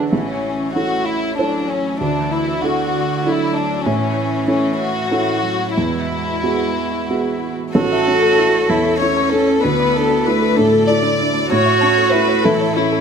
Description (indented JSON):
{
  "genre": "neoclassical piano and strings",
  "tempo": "95 BPM",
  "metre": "3/4",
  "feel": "rubato",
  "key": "A major",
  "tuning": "A4 = 440 Hz",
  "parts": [
    { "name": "warm cello", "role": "second line", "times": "0.0-13.0 s", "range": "D3 to F#4", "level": "-21 LUFS", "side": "right 5 dB", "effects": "none" },
    { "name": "felt-muted upright piano", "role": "accompaniment", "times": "0.0-13.0 s", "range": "A1 to F#5", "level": "-20 LUFS", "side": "right 2 dB", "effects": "none" },
    { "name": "dark chamber string section", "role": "sustained chords", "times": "0.0-13.0 s", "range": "D3 to D5", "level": "-30 LUFS", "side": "left 4 dB", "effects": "none" },
    { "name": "warm chamber violin section", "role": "melody", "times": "0.1-13.0 s", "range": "C#4 to D5", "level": "-18 LUFS", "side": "left 4 dB", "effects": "none" },
    { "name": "soft round pluck", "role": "arpeggios", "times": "7.8-13.0 s", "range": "D4 to A5", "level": "-25 LUFS", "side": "left 4 dB", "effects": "chorus" }
  ],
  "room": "moderate recital hall reverb, RT60 1.6 s",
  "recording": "none",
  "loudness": "-15 LUFS",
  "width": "side -6 dB against mid",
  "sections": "0.1-7.7 A section; 7.7-13.0 B section",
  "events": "none",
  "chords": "0.1 A; 2.0 Dsus2; 3.9 A; 5.8 Eadd9; 7.7 A; 9.6 Dsus2; 11.5 A",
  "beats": "| 0.12 0.76 1.39 | 2.01 2.64 3.26 | 3.87 4.48 5.11 | 5.77 6.43 7.09 | 7.74 8.37 9.00 | 9.63 10.25 10.87 | 11.50 12.12 12.75"
}